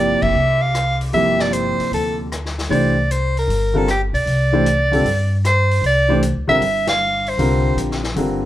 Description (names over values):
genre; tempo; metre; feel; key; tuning
modal jazz; 154 BPM; 4/4; swing 67% on 8ths; unclear; A4 = 440 Hz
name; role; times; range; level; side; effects
clear soprano saxophone; melody; 0.0-7.8 s; G4 to F5; -18 LUFS; right 1 dB; plate reverb
warm baby grand piano; accompaniment; 0.0-8.4 s; C3 to C5; -20 LUFS; equal; none
upright bass; bass; 0.0-8.5 s; F1 to G2; -20 LUFS; equal; none
vintage drum kit; drums; 0.2-8.3 s; hi-hat, kick drum, ride cymbal, rim click, snare drum; -30 LUFS; left 3 dB; none
room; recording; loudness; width
moderate studio reverb, RT60 0.5 s; none; -15 LUFS; side -13 dB against mid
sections
0.0-8.5 A section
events
band accent 0.2, 6.8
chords
0.0 G7sus4; 2.7 C9sus4